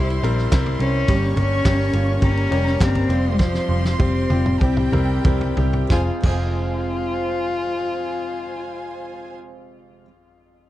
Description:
piano-driven pop; 90-106 BPM; 4/4; straight; F minor; A4 = 440 Hz
dark cello; melody; 0.0-9.3 s; F3 to F4; -24 LUFS; left 2 dB
warm studio violin section; second line; 0.0-9.3 s; F4 to Db6; -32 LUFS; right 2 dB
clear baby grand piano; accompaniment; 0.0-10.7 s; F2 to Bb4; -27 LUFS; left 4 dB
picked steel-string acoustic guitar; riff; 0.0-10.1 s; F2 to Ab4; -31 LUFS; right 9 dB
vintage muted picked electric bass; bass; 0.0-10.0 s; F1 to C2; -21 LUFS; equal
loose indie drum kit; drums; 0.1-6.4 s; crash cymbal, handclaps, kick drum, ride cymbal, snare drum, toms; -21 LUFS; equal
little or no reverb; dry, close 1970s-style studio recording; -18 LUFS; side -14 dB against mid
0.0-5.9 A section; 5.9-8.6 B section
slowing down 1.1-5.9; drum fill 3.4-5.9
0.0 C; 1.1 Gdim; 3.1 Fsus2; 4.6 C; 5.9 Fm

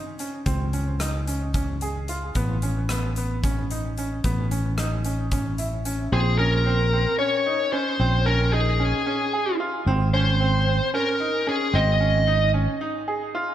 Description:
progressive instrumental, band music in an uneven meter; 224 BPM (eighths); 7/8; straight; A4 = 440 Hz
bright grand piano; arpeggios; 0.0-13.5 s; B3 to Ab4; -28 LUFS; right 2 dB; tape echo
fingered electric bass; bass; 0.0-12.7 s; Ab1 to Db3; -24 LUFS; equal
big rock drum kit; drums; 0.2-6.0 s; hi-hat, kick drum, rim click; -29 LUFS; equal
smooth overdriven lead guitar; melody; 6.1-12.5 s; Ab4 to Eb5; -23 LUFS; left 1 dB; tape echo
moderate scoring stage reverb, RT60 2.0 s; -21 LUFS; side -11 dB against mid
0.0-6.1 A section; 6.1-13.5 B section
0.0 N.C.; 2.4 Aadd9; 6.1 Bbm7; 9.9 Ab5

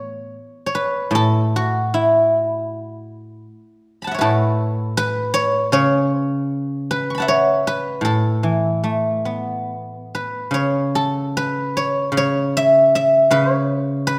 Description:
chinese traditional, Chinese solo plucked strings; 68-81 BPM; 4/4; rubato; A gong mode; A4 = 440 Hz
guzheng; solo; 0.0-14.2 s; A2 to C#6; -19 LUFS; equal
moderate scoring stage reverb, RT60 1.6 s; -19 LUFS; mono
0.0-10.5 A section; 10.5-14.2 B section

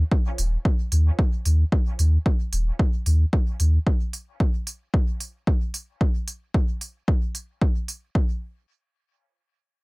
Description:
dub techno; 112 BPM; 4/4; straight; A4 = 441 Hz
pure sine sub bass; bass; 0.0-3.8 s; Eb1 to Eb2; -18 LUFS; equal; sidechain pumping
electronic kick drum; drums; 0.1-8.3 s; -21 LUFS; equal
electronic hi-hat; drums; 0.4-8.0 s; -31 LUFS; right 2 dB
digital ambience; echo-heavy mix; -21 LUFS; side -26 dB against mid
0.0-8.2 A section; 8.2-9.8 B section

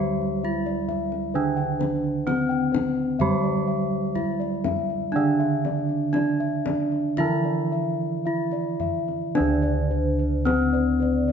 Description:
Javanese gamelan; 54-66 BPM; 4/4; straight; A4 = 440 Hz
gamelan-type bronze metallophone; melody; 0.0-11.3 s; C4-45c to G4-35c; -26 LUFS; equal; slapback echo
gamelan-type bronze metallophone; accompaniment; 0.0-11.3 s; D3 to G3-35c; -28 LUFS; right 6 dB
gamelan-type bossed gongs; arpeggios; 0.0-11.3 s; C5-45c to G5-35c; -30 LUFS; left 8 dB
gamelan-type bossed gongs; bass; 0.0-11.3 s; D2 to E4+30c; -28 LUFS; equal
kendang; percussion; 0.2-11.2 s; -32 LUFS; left 6 dB
gamelan-type bronze metallophone; arpeggios; 9.3-11.3 s; C5-45c to D5; -32 LUFS; right 5 dB
moderate recital hall reverb, RT60 1.5 s; nothing above 7.7 kHz; -22 LUFS; side -7 dB against mid
0.0-9.4 A section; 9.4-11.3 B section

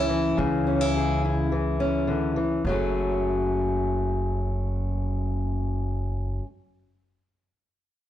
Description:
folk; 106 BPM; 4/4; straight; F# minor; A4 = 440 Hz
fingerpicked steel-string acoustic guitar; accompaniment; 0.0-6.5 s; F#2 to G#4; -25 LUFS; left 2 dB
upright bass; bass; 0.0-6.4 s; F#1 to C#2; -28 LUFS; right 1 dB
light reverb; blown-out, overdriven recording, overdrive; -23 LUFS; side -12 dB against mid
0.0-2.6 A section; 2.6-4.9 B section
0.0 C#m; 2.6 F#madd9

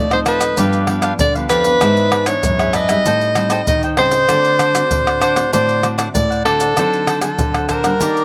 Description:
samba and choro; 97 BPM; 4/4; straight; A4 = 437 Hz
clear soprano saxophone; melody; 0.0-8.2 s; A4 to Eb5; -18 LUFS; equal
cavaquinho; accompaniment; 0.0-8.2 s; D4 to G5; -24 LUFS; equal; slapback echo
nylon-string guitar; accompaniment; 0.0-8.2 s; G2 to F#4; -28 LUFS; equal
nylon-string guitar; bass; 0.0-8.2 s; F2 to A3; -24 LUFS; equal
maracas, pandeiro, tamborim and surdo; percussion; 0.1-8.2 s; -23 LUFS; equal
little or no reverb; recorded outdoors, with no room sound; -16 LUFS; mono
0.0-8.2 A section
0.0 F7/A; 0.6 G7; 1.8 E7/G#; 3.1 Am7b5; 4.3 D7; 6.8 D7b9

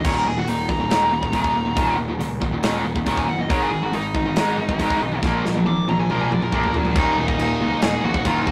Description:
heavy metal; 139 BPM; 4/4; straight; A4 = 440 Hz
nasal lead guitar with a parked wah; melody; 0.0-8.5 s; D4 to D6; -28 LUFS; equal; overdrive
distorted electric guitar; riff; 0.0-8.5 s; Eb2 to Bb3; -25 LUFS; equal; distortion
scooped high-gain guitar; riff; 0.0-8.5 s; Eb2 to Eb4; -32 LUFS; equal; distortion
fuzz picked electric bass; bass; 0.0-8.5 s; Eb1 to Db2; -30 LUFS; equal; overdrive
modern studio drum kit; drums; 0.0-8.5 s; crash cymbal, hi-hat, kick drum, snare drum, toms; -27 LUFS; equal
distorted electric guitar; riff; 6.9-8.5 s; Eb2 to Eb3; -27 LUFS; equal; distortion
moderate small room reverb, RT60 0.5 s; rough rehearsal-room recording, tube saturation; -21 LUFS; mono
0.0-7.0 A section; 7.0-8.5 B section
lead electric guitar solo 0.0-7.0; drum fill 5.2-7.0
0.0 Eb5; 3.5 Ab5; 5.2 Bb5; 7.0 Ebm

